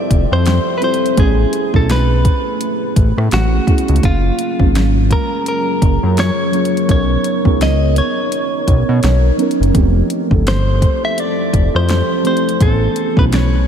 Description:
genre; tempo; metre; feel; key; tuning
contemporary R&B; 84 BPM; 4/4; swing 58% on 16ths; unclear; A4 = 441 Hz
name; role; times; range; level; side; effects
direct-recorded clean electric guitar; melody; 0.0-13.7 s; E#4 to E5; -20 LUFS; left 1 dB; diffuse ambient delay
muted felt-like synth keys; accompaniment; 0.0-13.7 s; E3 to G#5; -20 LUFS; right 4 dB; chorus
deep dark ambient pad; sustained chords; 0.0-13.7 s; F3 to E5; -21 LUFS; equal; chorus, built-in reverb
fat analog bass; bass; 0.1-13.7 s; F1 to B2; -14 LUFS; equal; none
smooth R&B drum kit; drums; 0.1-13.5 s; hi-hat, kick drum, rim click, snare drum; -17 LUFS; equal; none
room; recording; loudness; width
light reverb; none; -12 LUFS; side -8 dB against mid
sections
0.0-13.7 A section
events
none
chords
0.0 Fmaj9; 1.2 Amaj9; 4.0 F#maj9; 6.9 Bmaj9; 9.7 Fmaj9; 12.6 Amaj9

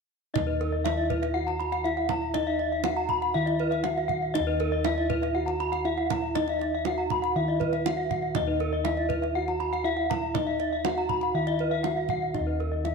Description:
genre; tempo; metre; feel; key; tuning
Balinese gamelan; 120 BPM; 4/4; straight; Eb pelog; A4 = 441 Hz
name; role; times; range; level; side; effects
gamelan-type bronze metallophone; melody; 0.3-12.9 s; Eb4 to Gb4-30c; -31 LUFS; right 2 dB; none
gamelan-type bronze metallophone; arpeggios; 0.3-12.9 s; Cb5-20c to Cb6-20c; -29 LUFS; left 8 dB; none
gamelan-type bossed gongs; bass; 0.4-12.9 s; Eb2 to Fb4+20c; -32 LUFS; equal; none
kendang; percussion; 0.4-12.9 s; none; -34 LUFS; right 10 dB; none
gamelan-type bronze metallophone; arpeggios; 0.6-12.7 s; Bb4-30c to Cb6-20c; -33 LUFS; right 9 dB; slapback echo
room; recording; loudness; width
wet echo chamber reverb, RT60 1.5 s, small room ambience; 1960s-style stereo with parts hard left and right; -25 LUFS; side -4 dB against mid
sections
0.4-12.9 A section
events
none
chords
none

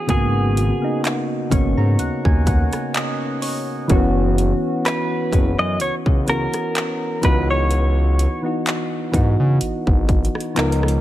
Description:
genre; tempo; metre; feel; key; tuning
contemporary R&B; 63 BPM; 4/4; swing 54% on 16ths; unclear; A4 = 435 Hz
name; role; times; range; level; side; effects
direct-recorded clean electric guitar; melody; 0.0-8.4 s; G#4 to D#5; -24 LUFS; equal; ping-pong delay
soft electric-piano-like synth keys; accompaniment; 0.0-11.0 s; C#3 to C#6; -22 LUFS; equal; chorus
smooth synth bass; bass; 0.1-11.0 s; F#1 to C#3; -19 LUFS; equal; none
trap drum kit; drums; 0.1-11.0 s; handclaps, hi-hat, kick drum, rim click; -21 LUFS; equal; none
room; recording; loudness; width
digital ambience; none; -17 LUFS; side -14 dB against mid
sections
0.0-11.0 A section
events
synth keys fill 1.0-3.9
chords
0.1 G#m11; 3.9 F#7sus4; 7.2 C#m11

